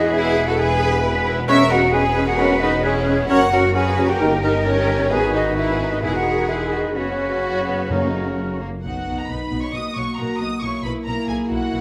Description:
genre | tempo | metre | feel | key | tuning
classical | 132 BPM | 4/4 | straight | unclear | A4 = 439 Hz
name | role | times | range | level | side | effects
warm symphonic violin section | melody | 0.0-11.8 s | G#3 to D#6 | -32 LUFS | equal | none
dark clarinet | second line | 0.0-8.6 s | C#4 to G#4 | -30 LUFS | equal | none
hollow concert flute | second line | 0.0-8.4 s | C#5 to C#6 | -25 LUFS | equal | none
rich symphonic violin section | second line | 0.0-11.8 s | E4 to F#5 | -29 LUFS | equal | none
warm oboe | second line | 0.0-8.6 s | A#4 to B4 | -32 LUFS | equal | none
warm bassoon | accompaniment | 0.0-8.6 s | C#3 to G#3 | -30 LUFS | equal | none
mellow French horn section | sustained chords | 0.0-11.8 s | A#3 to F#4 | -28 LUFS | equal | none
rich symphonic double bass section | bass | 0.0-11.8 s | E1 to B1 | -28 LUFS | equal | none
warm symphonic cello section | bass | 0.0-11.8 s | B2 to B4 | -29 LUFS | equal | none
rich studio viola section | accompaniment | 0.1-11.8 s | A#3 to C#5 | -29 LUFS | equal | none
timpani | percussion | 7.9-8.6 s | F#2 | -31 LUFS | equal | none
room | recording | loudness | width
wet recital hall reverb, RT60 1.5 s | none | -20 LUFS | mono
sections
0.0-8.9 A section; 8.9-11.8 B section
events
none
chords
0.0 E; 1.5 C#m7/E; 3.3 F#; 4.2 D#7/G; 5.1 G#m7; 6.0 Emaj7; 7.0 F#sus4; 7.9 F#; 8.9 B; 9.7 F#/B; 10.6 F#7/B

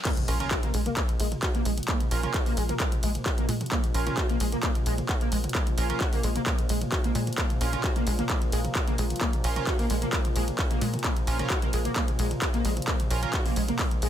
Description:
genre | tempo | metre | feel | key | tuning
driving peak-time techno | 131 BPM | 4/4 | straight | Bb minor | A4 = 440 Hz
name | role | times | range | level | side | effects
swell and impact | sound effects | 0.0-1.9 s | none | -38 LUFS | left 1 dB | none
overdriven synth lead | riff | 0.1-14.1 s | Ab3 to Gb4 | -32 LUFS | equal | distortion, ensemble chorus, sidechain pumping, digital delay
analog drone | drone | 1.2-14.1 s | Bb2 to F3 | -37 LUFS | left 2 dB | chorus, sidechain pumping
electronic kick drum | drums | 0.1-13.9 s | none | -27 LUFS | equal | distortion
punchy analog drum machine | drums | 0.1-14.1 s | crash cymbal, handclaps, hi-hat, ride cymbal, toms | -31 LUFS | right 1 dB | none
sync-sweep polysynth | stabs | 0.3-13.3 s | Db4 to Bb4 | -34 LUFS | right 5 dB | chorus, sidechain pumping, digital delay
tight sequencer bass | bass | 0.3-14.1 s | Bb1 to Bb2 | -28 LUFS | equal | sidechain pumping
room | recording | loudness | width
digital ambience | none | -24 LUFS | side -10 dB against mid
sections
0.1-14.1 A section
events
drop 0.1-14.1; impact 0.1-1.9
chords
0.1 Bbm

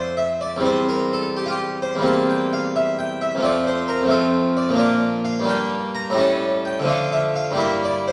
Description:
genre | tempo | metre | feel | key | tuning
classical, baroque-style suite movement for harpsichord | 87 BPM (dotted quarters) | 6/8 | rubato | F major, D minor from 4.8 s | A4 = 437 Hz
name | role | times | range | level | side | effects
harpsichord | solo | 0.0-8.1 s | E2 to Bb5 | -21 LUFS | equal | none
room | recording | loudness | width
wet scoring stage reverb, RT60 1.7 s | vinyl crackle | -21 LUFS | mono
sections
0.0-8.1 A section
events
none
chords
0.0 F; 0.6 C/E; 3.4 F; 4.8 Bb; 5.5 Gm; 6.2 A7; 6.9 Dm; 7.6 Edim/G

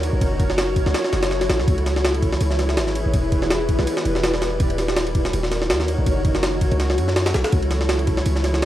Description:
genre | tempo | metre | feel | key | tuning
drum and bass, jungle | 164 BPM | 4/4 | swing 55% on 16ths | unclear | A4 = 440 Hz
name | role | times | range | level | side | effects
granular cloud pad | sustained chords | 0.0-8.7 s | D#4 to D5 | -24 LUFS | equal | built-in reverb
warm 808-style bass | bass | 0.0-8.7 s | D#1 to F#2 | -23 LUFS | equal | tube saturation
jungle sampler-style drum kit | drums | 0.0-8.7 s | kick drum, ride cymbal, snare drum | -21 LUFS | equal | none
room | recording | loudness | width
light reverb, digital ambience | dry, gritty hardware recording, transformer saturation, vinyl crackle | -18 LUFS | side -13 dB against mid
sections
0.0-8.7 A section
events
none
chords
0.2 F#m7; 1.7 C#m7; 3.1 Em7; 4.6 D#m7; 6.1 F#m7; 7.5 C#m7

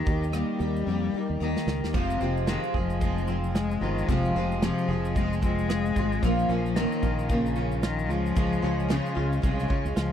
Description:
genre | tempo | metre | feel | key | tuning
acoustic pop | 112 BPM | 4/4 | swing 60% on 16ths | F minor | A4 = 440 Hz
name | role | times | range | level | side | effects
rich cello | second line | 0.0-10.1 s | C3 to Ab3 | -30 LUFS | left 7 dB | tape echo
picked steel-string acoustic guitar | accompaniment | 0.0-10.1 s | F2 to G4 | -30 LUFS | right 1 dB | double-tracked left and right
fingered electric bass | bass | 0.1-10.1 s | F1 to F2 | -29 LUFS | equal | none
natural country drum kit | drums | 0.1-10.1 s | crash cymbal, kick drum, rim click, shaker, snare drum | -28 LUFS | equal | none
direct-recorded clean electric guitar | arpeggios | 1.9-10.1 s | F3 to Ab4 | -36 LUFS | right 6 dB | none
room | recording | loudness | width
little or no reverb | dry, close 1970s-style studio recording | -24 LUFS | side -9 dB against mid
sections
0.0-1.9 A section; 1.9-10.1 B section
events
drum fill 0.9-1.9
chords
0.0 Eb; 1.9 Fm; 6.2 Bbm; 8.1 Db

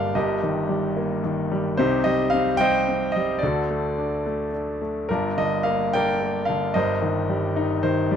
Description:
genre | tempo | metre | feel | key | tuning
classical, lyrical solo piano | 110 BPM | 3/4 | rubato | unclear | A4 = 440 Hz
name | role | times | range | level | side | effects
bright grand piano | solo | 0.0-8.2 s | G1 to G5 | -21 LUFS | equal | none
room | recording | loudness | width
light reverb | dark, warm production | -21 LUFS | side -8 dB against mid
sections
0.0-8.2 A section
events
grand piano fill 7.6-8.2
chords
0.2 Eb/G; 1.8 Cm; 3.4 D; 5.1 Gm7; 6.7 Cm7/G

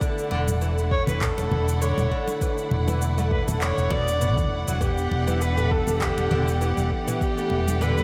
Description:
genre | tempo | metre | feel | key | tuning
organic downtempo | 100 BPM | 4/4 | swing 55% on 16ths | unclear | A4 = 439 Hz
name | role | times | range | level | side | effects
rich studio string section | sustained chords | 0.0-8.0 s | D3 to F#5 | -33 LUFS | equal | sidechain pumping
oud | arpeggios | 0.0-8.0 s | B2 to B3 | -32 LUFS | equal | analog delay
afro-pop drum kit | drums | 0.0-8.0 s | handclaps, shaker, toms | -34 LUFS | equal | small room ambience
electronic kick drum | drums | 0.0-7.3 s | none | -30 LUFS | equal | small room ambience
twinkling granular texture | texture | 0.0-8.0 s | D4 | -42 LUFS | equal | none
mellow fretless electric bass | bass | 0.3-8.0 s | E1 to E2 | -27 LUFS | equal | sidechain pumping
congas | percussion | 0.3-8.0 s | none | -35 LUFS | equal | none
warm kamancheh | melody | 0.9-8.0 s | G4 to D5 | -31 LUFS | equal | analog delay
room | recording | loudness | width
moderate plate reverb, RT60 2.7 s | dreamy mix soaked in reverb | -24 LUFS | mono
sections
0.0-8.0 A section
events
none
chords
0.0 D/E; 4.8 Em7

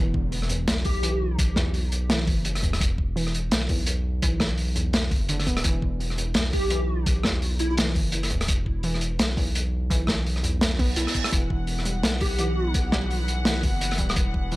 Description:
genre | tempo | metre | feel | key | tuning
half-time drum and bass | 169 BPM | 4/4 | swing 59% on 16ths, half-time | E minor | A4 = 440 Hz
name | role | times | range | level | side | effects
warbly dusty pluck | arpeggios | 0.0-14.6 s | E2 to E4 | -31 LUFS | right 1 dB | chorus, cassette tape, tape echo
saturated sub bass | bass | 0.0-14.6 s | D1 to B1 | -27 LUFS | equal | tube saturation
impact and reverse cymbal | sound effects | 0.0-1.4, 10.8-11.3 s | none | -35 LUFS | right 1 dB | none
electronic kick drum | drums | 0.1-14.4 s | none | -25 LUFS | equal | none
crunchy breakbeat drum kit | drums | 0.3-14.6 s | hi-hat, rim click, snare drum | -26 LUFS | equal | none
plucky unison lead | melody | 0.9-1.4, 6.5-7.7, 12.2-12.7 s | E4 to G4 | -31 LUFS | equal | ensemble chorus, tape echo
dark studio string section | sustained chords | 11.3-14.6 s | E3 to F#5 | -33 LUFS | left 2 dB | sidechain pumping
room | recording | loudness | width
little or no reverb | dry, gritty hardware recording | -22 LUFS | side -18 dB against mid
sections
0.0-14.6 A section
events
impact 0.0-1.4; reverse cymbal 10.8-11.3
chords
0.0 E5

